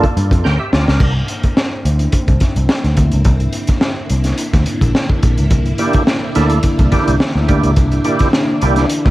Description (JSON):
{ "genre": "funk", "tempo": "106 BPM", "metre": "4/4", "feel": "straight", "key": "unclear", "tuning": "A4 = 440 Hz", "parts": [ { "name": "percussive tonewheel organ", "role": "stabs", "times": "0.0-1.1, 5.8-8.9 s", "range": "Bb3 to G5", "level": "-18 LUFS", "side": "right 3 dB", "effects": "overdrive, chorus vibrato, slow rotary speaker, tape echo" }, { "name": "crunchy breakbeat drum kit", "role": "drums", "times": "0.0-9.1 s", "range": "crash cymbal, hi-hat, kick drum, snare drum", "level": "-15 LUFS", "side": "equal", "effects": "none" }, { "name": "vintage muted picked electric bass", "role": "bass", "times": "0.2-9.1 s", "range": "Bb1 to G2", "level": "-15 LUFS", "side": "equal", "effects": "none" }, { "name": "string machine, full ensemble", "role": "sustained chords", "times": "1.0-9.1 s", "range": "D3 to E4", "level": "-21 LUFS", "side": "left 1 dB", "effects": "ensemble chorus" } ], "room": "light reverb", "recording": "vinyl crackle", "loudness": "-12 LUFS", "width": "side -17 dB against mid", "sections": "0.0-1.0 A section; 1.0-9.1 B section", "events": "drum fill 0.4-1.0", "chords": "0.0 Gm7; 1.0 C9" }